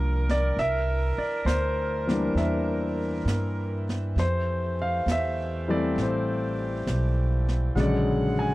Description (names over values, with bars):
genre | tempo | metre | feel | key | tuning
jazz ballad | 67 BPM | 4/4 | swing 68% on 8ths | unclear | A4 = 440 Hz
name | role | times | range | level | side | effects
warm concert grand piano | accompaniment | 0.0-8.5 s | C#3 to Ab5 | -27 LUFS | left 1 dB | none
mellow saxophone section | sustained chords | 0.0-8.5 s | E3 to F#5 | -35 LUFS | right 3 dB | none
upright bass | bass | 0.0-8.5 s | A1 to G2 | -27 LUFS | equal | none
jazz brush drum kit | drums | 0.3-8.5 s | brushed snare drum, hi-hat, snare drum | -34 LUFS | right 1 dB | none
room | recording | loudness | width
little or no reverb | dry, close 1970s-style studio recording | -24 LUFS | side -18 dB against mid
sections
0.0-8.5 A section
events
none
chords
0.0 Gm7; 0.6 C9; 4.2 Fmaj9; 7.8 Bb7alt